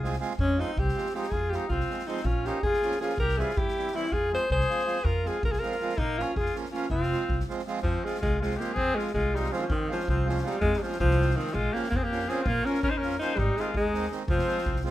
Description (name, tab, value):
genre	balkan folk, Balkan wedding band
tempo	323 BPM (eighths)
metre	5/8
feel	straight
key	F minor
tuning	A4 = 440 Hz
part	bright alto saxophone	melody	0.0-14.8 s	Eb3 to C5	-29 LUFS	equal	none
part	clear trumpet	second line	0.0-14.8 s	Ab3 to C5	-34 LUFS	left 4 dB	none
part	accordion	accompaniment	0.0-14.9 s	Eb3 to Ab4	-34 LUFS	right 5 dB	none
part	upright bass	bass	0.0-14.9 s	F1 to G2	-30 LUFS	equal	none
part	street-band drum kit	percussion	0.0-14.9 s	kick drum, snare drum	-33 LUFS	equal	none
room	moderate studio reverb, RT60 0.6 s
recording	minimal, uncompressed stereo recording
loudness	-25 LUFS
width	side -14 dB against mid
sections	0.4-7.8 A section; 7.8-14.9 B section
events	none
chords	0.4 Fm; 2.2 Bbm; 3.2 C; 4.1 Fm; 6.0 Bbm; 6.9 Fm; 11.5 Bbm; 13.4 Ab; 14.3 Fm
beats	0.01 0.19 | 0.38 0.57 0.75 0.94 1.13 | 1.31 1.50 1.69 1.87 2.06 | 2.25 2.43 2.62 2.81 2.99 | 3.18 3.37 3.55 3.74 3.93 | 4.11 4.30 4.49 4.67 4.86 | 5.05 5.23 5.42 5.61 5.79 | 5.98 6.17 6.35 6.54 6.72 | 6.91 7.10 7.28 7.47 7.65 | 7.84 8.03 8.21 8.40 8.58 | 8.77 8.95 9.14 9.32 9.51 | 9.69 9.88 10.06 10.25 10.43 | 10.62 10.80 10.98 11.17 11.35 | 11.54 11.72 11.90 12.09 12.27 | 12.46 12.64 12.82 13.01 13.19 | 13.37 13.55 13.74 13.92 14.10 | 14.28 14.47 14.65 14.83